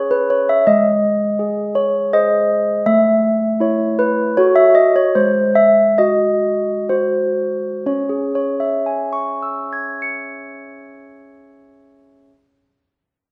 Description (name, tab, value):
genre	classical, tune for handbells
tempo	60-83 BPM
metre	3/4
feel	straight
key	C# minor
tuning	A4 = 440 Hz
part	handbells	solo	0.0-12.3 s	G#3 to C#7	-17 LUFS	equal	none
room	wet recital hall reverb, RT60 1.4 s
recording	none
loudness	-16 LUFS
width	mono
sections	0.0-7.9 A section; 7.9-10.8 B section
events	slowing down 1.8-7.9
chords	0.0 C#m; 0.7 G#; 2.8 A; 4.4 F#m; 5.1 G#7; 7.9 C#m